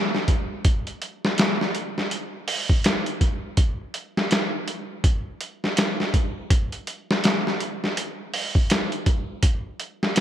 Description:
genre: trip hop.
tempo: 82 BPM.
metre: 4/4.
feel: swing 60% on 16ths.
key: none.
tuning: none.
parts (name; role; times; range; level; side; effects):
trip hop sampler-style drum kit; drums; 0.1-10.2 s; hi-hat, kick drum, snare drum; -21 LUFS; equal; gated reverb.
room: moderate plate reverb, RT60 2.6 s.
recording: bright 1980s-style digital production.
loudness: -22 LUFS.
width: side -11 dB against mid.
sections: 0.0-10.2 A section.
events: none.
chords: none.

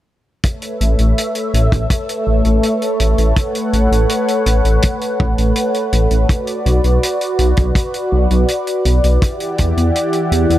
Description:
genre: synthwave.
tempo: 82 BPM.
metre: 4/4.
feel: straight.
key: A mixolydian.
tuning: A4 = 442 Hz.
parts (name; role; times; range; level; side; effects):
warm analog pad; sustained chords; 0.4-10.6 s; E3 to F#5; -17 LUFS; equal; chorus, sidechain pumping.
hi-hat; drums; 0.4-10.6 s; none; -25 LUFS; equal; none.
kick drum; drums; 0.4-9.7 s; none; -15 LUFS; equal; none.
wide detuned saw bass; bass; 0.8-10.6 s; A1 to E2; -14 LUFS; equal; chorus, tube saturation.
room: light reverb, studio ambience.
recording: none.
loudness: -13 LUFS.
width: side -14 dB against mid.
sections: 0.4-10.6 A section.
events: filter sweep on detuned saw bass 0.4-10.6.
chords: 0.4 Aadd9; 6.3 Bm; 9.2 Em7.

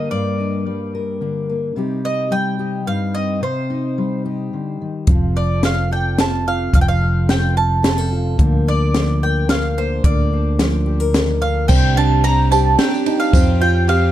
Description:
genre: indie folk with a building arrangement.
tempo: 109 BPM.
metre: 3/4.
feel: straight.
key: unclear.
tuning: A4 = 440 Hz.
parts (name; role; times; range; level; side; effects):
bowl-back mandolin; melody; 0.0-14.1 s; C5 to Bb5; -22 LUFS; right 2 dB; tape echo.
fingerpicked steel-string acoustic guitar; accompaniment; 0.0-13.3 s; G2 to Bb4; -22 LUFS; left 2 dB; none.
fingered electric bass; bass; 5.1-14.1 s; F1 to F2; -18 LUFS; equal; none.
compact cocktail drum kit; drums; 5.1-14.0 s; crash cymbal, hi-hat, kick drum, ride cymbal, snare drum; -18 LUFS; equal; none.
picked acoustic archtop guitar; accompaniment; 11.7-14.1 s; C3 to G4; -22 LUFS; left 6 dB; none.
clear upright piano; arpeggios; 11.7-14.1 s; C4 to G4; -21 LUFS; right 10 dB; none.
tambourine; percussion; 11.7-13.5 s; none; -34 LUFS; right 14 dB; none.
room: small room reverb.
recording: dark, warm production.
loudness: -15 LUFS.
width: side -12 dB against mid.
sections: 0.0-11.7 A section; 11.7-14.1 B section.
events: none.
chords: 0.0 Gm; 1.8 Cm; 5.1 F; 8.4 Bb/D; 11.7 Cmadd9; 13.3 Fsus2.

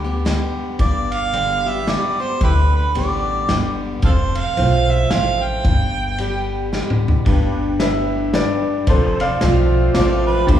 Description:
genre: honky-tonk and classic country.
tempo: 111 BPM.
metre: 3/4.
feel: swing 60% on 8ths.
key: G mixolydian.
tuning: A4 = 441 Hz.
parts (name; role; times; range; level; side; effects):
picked steel-string acoustic guitar; accompaniment; 0.0-10.6 s; F2 to G4; -23 LUFS; left 1 dB; none.
upright bass; bass; 0.0-10.6 s; F1 to D2; -20 LUFS; equal; none.
vintage drum kit; drums; 0.3-10.6 s; kick drum, ride cymbal, snare drum, toms; -21 LUFS; equal; none.
warm harmonica; second line; 0.8-6.7, 9.9-10.6 s; E4 to G5; -21 LUFS; right 3 dB; none.
honky-tonk upright piano; accompaniment; 7.3-10.6 s; B3 to C5; -28 LUFS; equal; none.
pedal steel guitar; sustained chords; 7.3-10.6 s; D4 to C5; -25 LUFS; left 3 dB; none.
warm upright piano; melody; 7.8-10.2 s; A4 to F5; -22 LUFS; left 1 dB; none.
room: wet recital hall reverb, RT60 1.4 s.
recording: heard from further back in the room, small room reverb.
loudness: -16 LUFS.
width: side -10 dB against mid.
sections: 0.0-7.3 A section; 7.3-10.6 B section.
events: harmonica solo 0.0-7.3; drum fill 6.7-7.3.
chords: 0.0 G; 4.0 F; 5.6 G; 8.9 F.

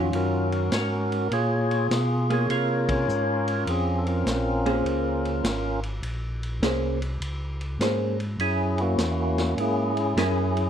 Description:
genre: soul jazz organ trio.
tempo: 102 BPM.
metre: 4/4.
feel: swing 67% on 8ths.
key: Bb minor.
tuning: A4 = 440 Hz.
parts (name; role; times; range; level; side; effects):
percussive tonewheel organ; melody; 0.0-10.7 s; Bb3 to Db5; -25 LUFS; equal; slow rotary speaker, overdrive, plate reverb.
vintage hollow-body jazz guitar; accompaniment; 0.0-10.5 s; Eb3 to C5; -27 LUFS; right 2 dB; none.
mellow tonewheel organ; bass; 0.0-10.7 s; Ab1 to C3; -27 LUFS; equal; chorus vibrato, slow rotary speaker.
vintage drum kit; drums; 0.1-10.7 s; hi-hat, kick drum, ride cymbal, snare drum; -33 LUFS; equal; none.
room: moderate studio reverb, RT60 0.6 s.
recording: dark, warm production.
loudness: -23 LUFS.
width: side -9 dB against mid.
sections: 0.0-10.7 A section.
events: band accent 2.8.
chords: 0.0 Ebm9; 1.3 Bbm9; 8.4 Gb7.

